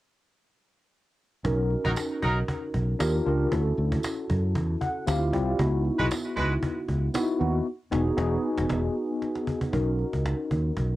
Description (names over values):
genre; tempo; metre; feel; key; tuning
polished 1980s jazz-funk pop; 116 BPM; 4/4; swing 54% on 16ths; B major; A4 = 440 Hz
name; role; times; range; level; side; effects
mellow tine electric piano; accompaniment; 1.4-11.0 s; B3 to F#5; -28 LUFS; left 1 dB; medium stereo tremolo, analog chorus, cassette tape
fingered electric bass; bass; 1.4-11.0 s; E1 to F#2; -26 LUFS; equal; none
cajon; drums; 1.4-10.9 s; none; -34 LUFS; equal; cassette tape
warm horn section; second line; 1.8-2.4, 6.0-6.5 s; F#3 to B4; -30 LUFS; right 1 dB; cassette tape, analog delay
tambourine; percussion; 2.0-7.3 s; none; -41 LUFS; right 5 dB; none
room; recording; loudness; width
light reverb; home recording on cassette; -24 LUFS; side -16 dB against mid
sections
0.0-1.4 A section; 1.4-9.7 B section; 9.7-11.0 C section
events
drum fill 0.4-1.4, 9.2-9.7; tine electric piano fill 4.6-5.6; band accent 7.7-9.7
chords
0.0 N.C.; 1.4 Bmaj9; 3.0 D#maj9; 3.5 Dmaj9; 5.1 Dm11; 5.6 C#m11; 7.7 Emaj9; 9.7 Bmaj9